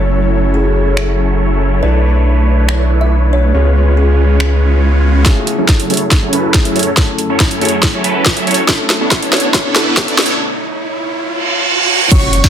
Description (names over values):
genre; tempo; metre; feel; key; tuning
future bass; 140 BPM; 4/4; half-time; F# minor; A4 = 440 Hz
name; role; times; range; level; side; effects
kalimba; melody; 0.0-4.1, 12.1-12.4 s; C#4 to E5; -22 LUFS; equal; sidechain pumping, digital delay
felt-muted upright piano; accompaniment; 0.0-10.4 s; A3 to G#5; -22 LUFS; left 4 dB; sidechain pumping, digital delay
ethereal airy pad; sustained chords; 0.0-12.1 s; F#2 to C#5; -26 LUFS; equal; ensemble chorus, built-in reverb, sidechain pumping
supersaw chords; riff; 0.0-12.5 s; F#3 to E5; -16 LUFS; right 1 dB; phaser, sidechain pumping, low-pass filter, digital delay
saturated sub bass; bass; 0.0-5.2, 12.1-12.5 s; F#1 to C#2; -12 LUFS; equal; sidechain pumping
trap drum kit; drums; 1.0-12.5 s; crash cymbal, finger snaps, hi-hat, snare drum; -14 LUFS; equal; soft clipping on snare
riser, reverse cymbal and impact; sound effects; 3.7-12.5 s; none; -19 LUFS; right 3 dB; none
electronic kick drum; drums; 5.3-12.5 s; none; -12 LUFS; equal; none
airy dreamy lead; arpeggios; 12.1-12.5 s; C#6; -19 LUFS; equal; chorus, sidechain pumping
room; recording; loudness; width
light reverb, digital ambience; dense, heavily limited modern master, high-pass filter; -10 LUFS; side -9 dB against mid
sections
0.0-5.3 A section; 5.3-12.1 B section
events
riser 3.7-5.3, 5.3-12.1; build-up 5.3-12.1; drum fill 5.3-10.4; filter sweep on supersaw synth 5.3-12.1; filter sweep on ambient pad 5.3-12.1; filter sweep 5.3-12.1; break 10.4-12.1; reverse cymbal 11.3-12.1; impact 12.1-12.5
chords
0.0 F#m7; 1.8 Bm11; 3.5 C#7; 5.3 F#m7; 8.7 Bm11; 10.4 C#7